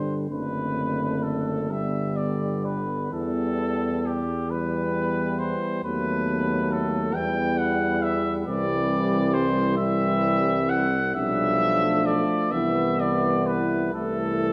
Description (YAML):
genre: classical, hymn-like piece for brass band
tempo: 40-46 BPM (dotted quarters)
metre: 6/8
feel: rubato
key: G major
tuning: A4 = 443 Hz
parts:
  - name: warm cornet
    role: melody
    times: 0.0-14.5 s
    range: G4 to G5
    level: -29 LUFS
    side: equal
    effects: none
  - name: dark French horn section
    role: second line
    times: 0.0-14.5 s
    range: B3 to E4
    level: -33 LUFS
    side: equal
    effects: none
  - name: clear euphonium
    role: accompaniment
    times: 0.0-14.5 s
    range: G3 to B3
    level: -33 LUFS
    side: equal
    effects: none
  - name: warm trombone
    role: accompaniment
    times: 0.0-14.5 s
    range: D3 to F#3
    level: -33 LUFS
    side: equal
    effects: none
  - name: warm tuba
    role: bass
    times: 0.0-14.5 s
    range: F#1 to E2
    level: -31 LUFS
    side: equal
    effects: none
room: wet scoring stage reverb, RT60 1.6 s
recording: dark, warm production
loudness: -25 LUFS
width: mono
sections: 0.0-14.5 A section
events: none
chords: 0.3 D7/F#; 1.7 G; 3.1 Em; 5.8 B7/D#; 7.1 Em; 8.5 C; 11.2 G7/B; 12.5 Cmaj7; 13.9 Am/C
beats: | 0.30 1.70 | 3.12 4.49 | 5.84 7.15 | 8.47 9.79 | 11.15 12.52 | 13.94